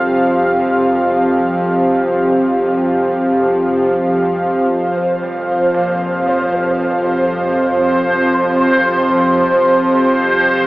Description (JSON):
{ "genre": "dark ambient drone", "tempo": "free time", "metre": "none", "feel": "none", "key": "unclear", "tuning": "A4 = 444 Hz", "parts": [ { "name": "dark analog pad", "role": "sustained chords", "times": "0.0-10.7 s", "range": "C4 to F5", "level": "-15 LUFS", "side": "equal", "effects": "chorus" }, { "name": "bowed-like drone", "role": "drone", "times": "0.0-10.7 s", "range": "F2 to F3", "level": "-19 LUFS", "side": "equal", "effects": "built-in reverb" }, { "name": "bubbling stepped-filter texture", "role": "texture", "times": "4.8-10.7 s", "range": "C5", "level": "-15 LUFS", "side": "right 1 dB", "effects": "chorus, built-in reverb" }, { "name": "clear concert grand piano", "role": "arpeggios", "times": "5.2-10.7 s", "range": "Bb2 to G3", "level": "-33 LUFS", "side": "equal", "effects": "none" } ], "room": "wet plate reverb, RT60 2.5 s", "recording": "echo-heavy mix, AM radio sound", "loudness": "-12 LUFS", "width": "side -19 dB against mid", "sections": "0.0-4.7 A section; 4.7-10.7 B section", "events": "none", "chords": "0.0 Fsus2" }